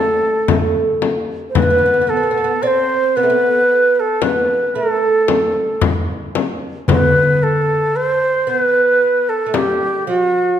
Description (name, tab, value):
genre	Arabic maqam ensemble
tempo	113 BPM (eighths)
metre	10/8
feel	straight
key	unclear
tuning	A4 = 440 Hz
part	breathy ney	melody	0.0-10.6 s	F#4-44c to D5	-15 LUFS	right 1 dB	none
part	oud	second line	0.0-10.6 s	F#3-50c to C4	-21 LUFS	right 4 dB	none
part	frame drum	percussion	0.5-9.8 s	none	-19 LUFS	left 5 dB	none
part	darbuka	percussion	6.9-9.8 s	none	-19 LUFS	left 3 dB	none
room	wet recital hall reverb, RT60 1.6 s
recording	none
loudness	-13 LUFS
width	side -9 dB against mid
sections	0.0-10.6 A section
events	none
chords	none